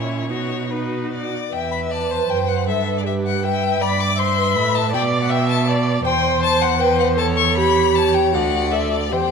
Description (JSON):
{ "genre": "quick classical-period movement for string quartet", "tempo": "158 BPM", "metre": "3/4", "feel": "rubato", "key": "E minor", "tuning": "A4 = 440 Hz", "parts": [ { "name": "clear violin", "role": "melody", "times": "0.0-9.3 s", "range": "B4 to D6", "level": "-21 LUFS", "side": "left 9 dB", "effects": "none" }, { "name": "rich violin", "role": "second line", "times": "0.0-9.3 s", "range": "E4 to E5", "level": "-26 LUFS", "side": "left 3 dB", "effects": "none" }, { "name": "rich viola", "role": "accompaniment", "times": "0.0-9.3 s", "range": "C#4 to E5", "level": "-22 LUFS", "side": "right 4 dB", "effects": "none" }, { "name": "rich cello", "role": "bass", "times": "0.0-9.3 s", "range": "D2 to B2", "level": "-22 LUFS", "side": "right 4 dB", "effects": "none" } ], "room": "moderate concert hall reverb, RT60 1.9 s", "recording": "none", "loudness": "-16 LUFS", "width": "side -6 dB against mid", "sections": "0.0-1.5 A section; 1.5-9.3 B section", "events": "none", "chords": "0.3 B; 1.5 E5; 2.7 Em/G; 3.8 G; 4.9 G6/B; 6.1 C/E; 7.2 A7/E; 8.3 D" }